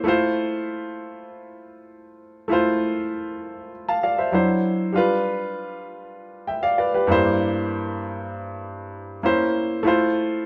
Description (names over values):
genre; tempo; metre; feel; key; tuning
soul; 98 BPM; 4/4; straight; F major; A4 = 441 Hz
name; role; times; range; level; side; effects
clear baby grand piano; solo; 0.0-10.5 s; G2 to A5; -24 LUFS; equal; none
room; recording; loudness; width
moderate stone room reverb, RT60 1.1 s; band playing live in one room; -23 LUFS; mono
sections
0.0-10.5 A section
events
none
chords
0.1 Fmaj7; 4.3 D9; 5.0 G7; 7.1 C9/G; 9.2 C7b9; 9.8 Fmaj7